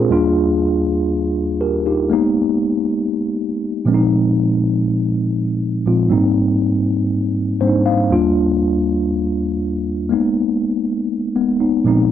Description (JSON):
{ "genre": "disco", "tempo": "120 BPM", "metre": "4/4", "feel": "straight", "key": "Eb major", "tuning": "A4 = 441 Hz", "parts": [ { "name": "mellow tine electric piano", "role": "solo", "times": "0.0-12.1 s", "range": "Eb2 to F5", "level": "-15 LUFS", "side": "equal", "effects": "medium stereo tremolo" } ], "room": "little or no reverb", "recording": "dry, close 1970s-style studio recording", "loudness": "-15 LUFS", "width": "side -10 dB against mid", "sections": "0.1-12.1 A section", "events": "tine electric piano fill 7.4-8.1", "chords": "0.1 Ebmaj9; 2.1 Abmadd9; 3.9 Bb7sus4; 6.1 Abmaj7; 8.1 Ebmaj9; 10.1 Abmadd9" }